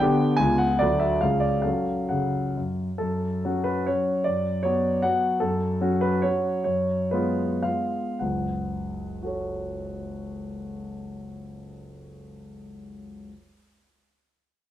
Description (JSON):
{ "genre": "classical, romantic triple-time dance for piano with dotted rhythms", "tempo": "100-164 BPM", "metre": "3/4", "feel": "rubato", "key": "F# minor", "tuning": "A4 = 440 Hz", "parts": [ { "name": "warm grand piano", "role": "solo", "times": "0.0-13.3 s", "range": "F#1 to G#5", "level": "-24 LUFS", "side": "equal", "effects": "none" } ], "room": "moderate recital hall reverb, RT60 1.3 s", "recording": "close, detailed microphones", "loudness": "-23 LUFS", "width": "side -12 dB against mid", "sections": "0.0-3.0 A section; 3.0-8.2 B section; 8.2-11.2 C section", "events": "slowing down 4.8-8.2", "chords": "0.4 C#7; 0.8 D; 1.2 C#; 1.6 F#m; 4.3 Bm/F#; 5.4 F#m; 6.7 C#7/F#; 8.2 F#m" }